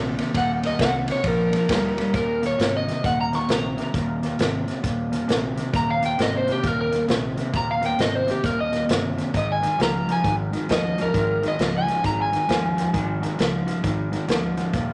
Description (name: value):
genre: electric blues shuffle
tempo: 133 BPM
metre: 4/4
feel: swing 64% on 8ths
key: Eb mixolydian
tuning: A4 = 438 Hz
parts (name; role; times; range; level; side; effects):
- electric guitar through a small old amp; riff; 0.0-14.9 s; Eb2 to G3; -27 LUFS; equal; none
- vintage muted fingered electric bass; bass; 0.0-14.9 s; Eb1 to Eb2; -34 LUFS; equal; none
- natural country drum kit; drums; 0.2-14.9 s; hi-hat, kick drum, ride cymbal, snare drum; -29 LUFS; equal; none
- crunchy overdriven guitar; melody; 0.4-13.5 s; G4 to Db6; -27 LUFS; equal; none
room: wet large studio reverb, RT60 1.4 s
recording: nothing above 10.9 kHz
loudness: -23 LUFS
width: mono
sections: 0.0-2.1 A section; 2.1-14.9 B section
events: overdriven electric guitar solo 0.0-2.1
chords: 0.0 Eb5; 1.2 Bb; 2.1 Eb5; 9.3 Ab5